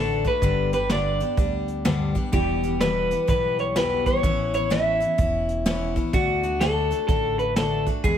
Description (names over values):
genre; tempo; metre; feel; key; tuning
honky-tonk and classic country; 126 BPM; 4/4; swing 64% on 8ths; D major; A4 = 440 Hz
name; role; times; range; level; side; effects
electric guitar through a small old amp; melody; 0.0-8.2 s; F#4 to E5; -24 LUFS; equal; none
picked steel-string acoustic guitar; accompaniment; 0.0-8.2 s; E2 to G#4; -27 LUFS; left 3 dB; none
upright bass; bass; 0.0-8.2 s; E1 to E2; -30 LUFS; right 1 dB; none
vintage brush drum kit; drums; 0.2-8.2 s; hi-hat, kick drum, snare drum; -26 LUFS; right 1 dB; none
room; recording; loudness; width
light reverb; none; -20 LUFS; side -9 dB against mid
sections
0.0-8.2 A section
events
none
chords
0.4 G; 2.3 Em; 4.2 Aadd9; 6.1 D